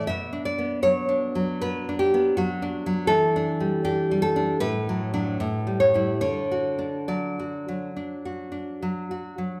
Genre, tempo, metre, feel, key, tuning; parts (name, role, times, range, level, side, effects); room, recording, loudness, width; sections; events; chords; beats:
romantic piece for solo classical guitar; 69-83 BPM; 4/4; rubato; D major; A4 = 435 Hz
nylon-string guitar; solo; 0.0-9.6 s; A2 to E5; -25 LUFS; equal
wet recital hall reverb, RT60 1.6 s; recorded in a church or concert hall; -25 LUFS; mono
0.0-9.6 A section
0.1 Bm; 3.1 Em7; 4.6 D/A; 5.4 A7; 6.2 D
| 0.09 0.85 1.62 2.38 | 3.12 3.87 4.64 5.42 | 6.23 7.09 7.95 8.79